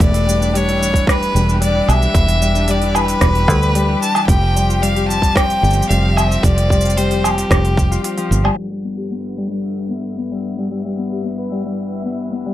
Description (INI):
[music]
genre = folktronica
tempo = 112 BPM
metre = 4/4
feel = straight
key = unclear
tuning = A4 = 440 Hz
[part]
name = clear violin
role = melody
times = 0.0-8.3 s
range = G4 to A5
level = -20 LUFS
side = left 1 dB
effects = digital delay
[part]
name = bright string quartet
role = sustained chords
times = 0.0-12.5 s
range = G2 to G4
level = -28 LUFS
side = left 1 dB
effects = none
[part]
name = Celtic harp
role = arpeggios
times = 0.0-12.5 s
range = E3 to B4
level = -21 LUFS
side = left 3 dB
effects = low-pass filter, digital delay
[part]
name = fingered electric bass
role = bass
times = 0.0-8.5 s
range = E1 to D2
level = -16 LUFS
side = right 1 dB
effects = none
[part]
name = electronic kick drum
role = drums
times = 0.0-7.9 s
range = none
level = -16 LUFS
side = right 1 dB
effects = overdrive
[part]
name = organic electronic drum kit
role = drums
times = 0.0-8.6 s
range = hi-hat, rim click, shaker, woodblock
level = -21 LUFS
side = right 1 dB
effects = overdrive, low-pass filter on hats, low-pass filter on perc, low-pass filter on snare, low-pass filter on room
[part]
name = backwards swelling texture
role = texture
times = 9.7-12.5 s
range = E5 to E6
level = -37 LUFS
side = left 3 dB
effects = built-in reverb
[sound]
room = light reverb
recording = low-pass filter, faint mains hum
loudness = -14 LUFS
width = side -13 dB against mid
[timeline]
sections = 0.0-8.6 A section; 8.6-12.5 B section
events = filter sweep on harp 0.0-8.6, 8.6-12.5; break 8.0-8.6; filter sweep 8.6-12.5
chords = 0.0 Em7; 4.3 Fsus2; 8.6 G